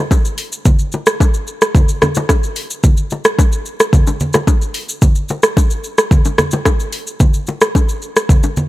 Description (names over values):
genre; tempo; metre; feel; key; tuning
afrobeats; 110 BPM; 4/4; straight; none; none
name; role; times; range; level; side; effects
afro-pop drum kit; drums; 0.1-8.7 s; hi-hat, kick drum, rim click, shaker; -12 LUFS; equal; overdrive
bongos and congas; percussion; 0.1-8.7 s; none; -19 LUFS; left 1 dB; none
room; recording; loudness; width
digital ambience; none; -12 LUFS; side -17 dB against mid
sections
0.0-8.7 A section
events
none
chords
none